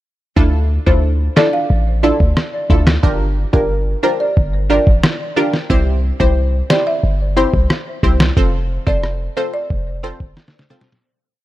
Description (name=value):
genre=dancehall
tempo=90 BPM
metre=4/4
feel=straight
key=D minor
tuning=A4 = 440 Hz
part: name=punchy chord stab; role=accompaniment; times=0.4-10.9 s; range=C4 to C5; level=-20 LUFS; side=right 1 dB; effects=chorus, sidechain pumping
part: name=warm 808-style bass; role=bass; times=0.4-10.3 s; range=F1 to D2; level=-16 LUFS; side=equal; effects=none
part: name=lo-fi sampler-style drum kit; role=drums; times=0.4-11.1 s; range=kick drum, rim click, snare drum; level=-15 LUFS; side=equal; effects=none
part: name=folk marimba with medium mallets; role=melody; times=0.9-10.1 s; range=Bb4 to F5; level=-21 LUFS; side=equal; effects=tape echo
room=little or no reverb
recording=lossy compression artefacts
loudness=-13 LUFS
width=side -15 dB against mid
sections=0.4-11.0 verse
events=fade-out 8.4-11.0; drum fill 10.4-11.0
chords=0.4 Dmadd9; 3.0 Gm7; 5.7 C; 8.4 F